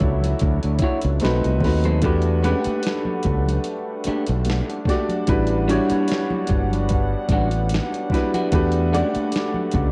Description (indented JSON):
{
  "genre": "R&B, neo-soul",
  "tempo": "74 BPM",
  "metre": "4/4",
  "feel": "swing 53% on 16ths",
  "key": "E dorian",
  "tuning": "A4 = 440 Hz",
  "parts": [
    { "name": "warm grand piano", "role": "accompaniment", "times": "0.0-9.9 s", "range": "G3 to F#5", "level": "-26 LUFS", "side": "equal", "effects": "cassette tape" },
    { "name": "clear brass ensemble", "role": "sustained chords", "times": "0.0-9.9 s", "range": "B2 to F#5", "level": "-33 LUFS", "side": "equal", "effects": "cassette tape" },
    { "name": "modern bright fingered electric bass", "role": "bass", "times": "0.0-9.9 s", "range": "G1 to E2", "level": "-23 LUFS", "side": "equal", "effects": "none" },
    { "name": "dusty soul sampler-style drum kit", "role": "drums", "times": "0.0-9.9 s", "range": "hi-hat, kick drum, snare drum", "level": "-27 LUFS", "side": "equal", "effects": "cassette tape" },
    { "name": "congas", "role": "percussion", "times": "0.0-9.9 s", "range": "none", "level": "-35 LUFS", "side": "equal", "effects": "none" },
    { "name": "electric guitar through a small old amp", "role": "second line", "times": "0.8-9.3 s", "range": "G3 to C#5", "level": "-28 LUFS", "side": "equal", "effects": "cassette tape" }
  ],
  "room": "little or no reverb",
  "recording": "home recording on cassette",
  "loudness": "-21 LUFS",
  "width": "mono",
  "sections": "0.0-9.9 A section",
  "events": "none",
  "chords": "0.0 Dmaj9; 1.2 B7b9; 2.0 Em11; 5.3 A13sus4; 8.5 Em11",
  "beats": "0.41 1.22 | 2.03 2.84 3.65 4.46 | 5.28 6.09 6.90 7.71 | 8.52 9.33"
}